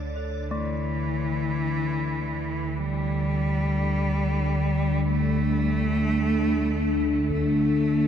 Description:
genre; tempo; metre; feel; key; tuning
dark ambient drone; free time; none; none; unclear; A4 = 440 Hz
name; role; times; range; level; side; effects
gamelan-type bronze metallophone; arpeggios; 0.0-7.3 s; A3 to C#5; -37 LUFS; left 4 dB; tape echo
analog drone; drone; 0.0-8.1 s; D2 to D3; -26 LUFS; equal; chorus
icy glass pad; texture; 0.0-8.1 s; A4 to D5; -45 LUFS; right 1 dB; none
clear cello; melody; 0.5-8.1 s; E3 to A3; -27 LUFS; equal; tape echo
dark analog pad; sustained chords; 3.8-8.1 s; D4 to E5; -30 LUFS; equal; chorus, phaser
taiko ensemble; percussion; 7.3-7.5 s; none; -41 LUFS; right 3 dB; none
room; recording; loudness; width
wet huge ambient reverb, RT60 8.9 s; none; -23 LUFS; side -8 dB against mid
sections
0.5-8.1 A section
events
none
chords
0.0 N.C.; 0.5 Dsus2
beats
free time

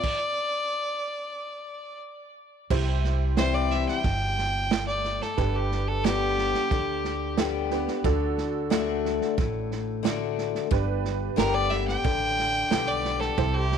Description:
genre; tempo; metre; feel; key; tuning
honky-tonk and classic country; 90 BPM; 4/4; straight; C major; A4 = 440 Hz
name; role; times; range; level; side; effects
clear fiddle; melody; 0.0-7.3, 11.4-13.8 s; G4 to G5; -28 LUFS; equal; tape echo
picked steel-string acoustic guitar; accompaniment; 0.0-13.8 s; G2 to G4; -30 LUFS; left 12 dB; none
vintage drum kit; drums; 0.0-13.8 s; crash cymbal, hi-hat, kick drum, snare drum; -30 LUFS; right 5 dB; none
honky-tonk upright piano; accompaniment; 2.7-13.8 s; D4 to C5; -34 LUFS; right 14 dB; none
upright bass; bass; 2.7-13.8 s; G1 to D2; -29 LUFS; equal; none
room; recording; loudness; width
little or no reverb; 1960s-style stereo with parts hard left and right; -24 LUFS; side -7 dB against mid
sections
0.0-2.7 A section; 2.7-13.8 B section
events
stop 0.0-2.7; fiddle solo 2.7-13.8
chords
0.0 N.C.; 2.7 C; 5.4 G; 8.0 D; 10.7 G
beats
| 0.03 0.70 1.37 2.04 | 2.71 3.37 4.04 4.71 | 5.38 6.04 6.71 7.38 | 8.04 8.71 9.38 10.04 | 10.71 11.38 12.04 12.71 | 13.38

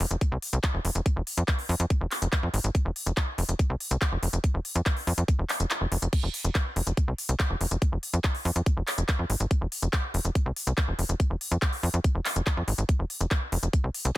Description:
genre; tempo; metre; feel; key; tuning
psychedelic trance; 142 BPM; 4/4; straight; F minor; A4 = 439 Hz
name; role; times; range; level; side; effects
tight sequencer bass; bass; 0.0-14.1 s; F1 to F2; -26 LUFS; equal; tube saturation
techno drum kit; drums; 0.0-14.1 s; crash cymbal, handclaps, hi-hat; -31 LUFS; left 1 dB; none
electronic kick drum; drums; 0.2-13.8 s; none; -25 LUFS; equal; none
room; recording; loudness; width
little or no reverb; dense, heavily limited modern master; -25 LUFS; side -17 dB against mid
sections
0.0-14.2 A section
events
kick drops out 5.7-6.1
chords
none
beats
0.21 0.64 | 1.06 1.48 1.90 2.33 | 2.75 3.17 3.59 4.02 | 4.44 4.86 5.28 5.71 | 6.13 6.55 6.97 7.40 | 7.82 8.24 8.66 9.09 | 9.51 9.93 10.35 10.78 | 11.20 11.62 12.04 12.47 | 12.89 13.31 13.73

